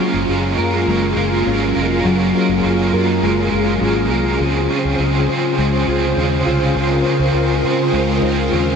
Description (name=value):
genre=dream pop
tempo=102 BPM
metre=4/4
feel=straight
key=Db major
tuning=A4 = 440 Hz
part: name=cranked stack guitar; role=accompaniment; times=0.0-8.8 s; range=Db3 to Bb4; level=-22 LUFS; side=right 4 dB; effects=overdrive, tremolo, ensemble chorus
part: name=string machine, violas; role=sustained chords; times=0.0-8.8 s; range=Db3 to C5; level=-18 LUFS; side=equal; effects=ensemble chorus
part: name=mellow electric guitar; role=arpeggios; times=0.0-8.8 s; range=Db3 to C5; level=-20 LUFS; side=left 2 dB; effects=ensemble chorus, tape echo
part: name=vintage muted fingered electric bass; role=bass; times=0.1-8.8 s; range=F1 to Db3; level=-22 LUFS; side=equal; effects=none
room=wet huge ambient reverb, RT60 7.2 s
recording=dreamy mix soaked in reverb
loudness=-14 LUFS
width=side -6 dB against mid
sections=0.0-8.8 A section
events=none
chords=0.0 Gbmaj9; 4.4 Dbmaj7